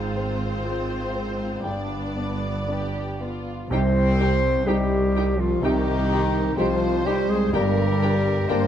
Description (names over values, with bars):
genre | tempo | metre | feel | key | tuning
cinematic, emotional film score for orchestra | 58-63 BPM | 4/4 | rubato | C minor | A4 = 441 Hz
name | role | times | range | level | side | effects
muted studio violin section | melody | 0.0-8.7 s | G4 to D5 | -32 LUFS | left 2 dB | none
muted studio violin section | second line | 0.0-8.6 s | D4 to G5 | -34 LUFS | left 3 dB | none
muted studio viola section | accompaniment | 0.0-8.6 s | B3 to G4 | -34 LUFS | right 1 dB | none
warm baby grand piano | accompaniment | 0.0-8.7 s | G1 to G5 | -29 LUFS | left 1 dB | none
muted studio cello section | bass | 0.0-8.7 s | C2 to Ab2 | -28 LUFS | right 2 dB | none
muted studio double bass section | bass | 0.0-8.7 s | G1 to C2 | -28 LUFS | right 2 dB | none
bright clarinet | second line | 3.7-8.7 s | Eb4 to C5 | -27 LUFS | equal | none
clear French horn section | sustained chords | 3.7-8.7 s | Eb3 to C4 | -24 LUFS | left 2 dB | none
room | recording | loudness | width
moderate scoring stage reverb, RT60 1.7 s | none | -21 LUFS | side -10 dB against mid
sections
0.0-3.7 A section; 3.7-8.7 B section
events
none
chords
0.0 Fm/Ab; 1.7 G; 3.7 Cm; 7.5 Gm